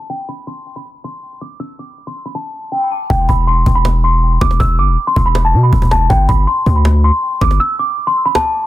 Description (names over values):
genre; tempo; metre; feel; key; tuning
hip hop, trap; 160 BPM; 4/4; half-time; E minor; A4 = 440 Hz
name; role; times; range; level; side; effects
worn celesta; melody; 0.0-8.7 s; G5 to E6; -16 LUFS; equal; low-pass filter, ping-pong delay
long sustained 808-style bass; bass; 3.1-7.6 s; E1 to B2; -12 LUFS; equal; none
cajon; drums; 3.1-8.4 s; none; -19 LUFS; equal; none
room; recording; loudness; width
small room ambience; dense, heavily limited modern master, low-pass filter; -11 LUFS; side -15 dB against mid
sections
0.0-3.1 A section; 3.1-8.7 B section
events
filter sweep 0.0-3.1; hi-hats muted 3.1-8.7; break 7.6-8.7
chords
0.0 N.C.; 3.1 E5; 6.1 G5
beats
| 0.10 0.48 0.85 1.23 | 1.60 1.98 2.35 2.73 | 3.10 3.48 3.85 4.23 | 4.60 4.98 5.35 5.73 | 6.10 6.48 6.85 7.23 | 7.60 7.98 8.35